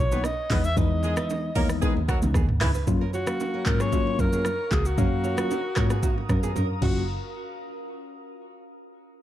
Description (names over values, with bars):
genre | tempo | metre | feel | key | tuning
afrobeats | 114 BPM | 4/4 | straight | F# major | A4 = 442 Hz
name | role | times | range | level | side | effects
warm alto saxophone | melody | 0.0-7.1 s | F#4 to E5 | -30 LUFS | equal | digital delay
nylon-string guitar | riff | 0.0-7.1 s | A#3 to D#5 | -37 LUFS | right 9 dB | digital delay
warm double bass | bass | 0.0-7.1 s | F#1 to G#2 | -26 LUFS | equal | none
warm horn section | second line | 0.1-2.7 s | E3 to B4 | -35 LUFS | right 1 dB | none
mellow tine electric piano | accompaniment | 0.1-7.0 s | E3 to E#5 | -30 LUFS | moving between left 9 dB and right 1 dB | auto-pan
afro-pop drum kit | drums | 0.1-6.9 s | crash cymbal, handclaps, hi-hat, kick drum, rim click, shaker, toms | -26 LUFS | equal | none
bongos and congas | percussion | 0.1-7.1 s | none | -36 LUFS | right 8 dB | none
glassy FM pad | sustained chords | 3.4-7.1 s | A#4 to D#6 | -38 LUFS | equal | ensemble chorus, built-in reverb
room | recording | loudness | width
little or no reverb | dark, warm production | -22 LUFS | side -12 dB against mid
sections
0.0-2.9 A section; 2.9-7.1 B section; 7.1-9.2 C section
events
none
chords
0.0 Bmaj7; 0.5 Emaj7; 2.9 F#maj7; 7.1 N.C.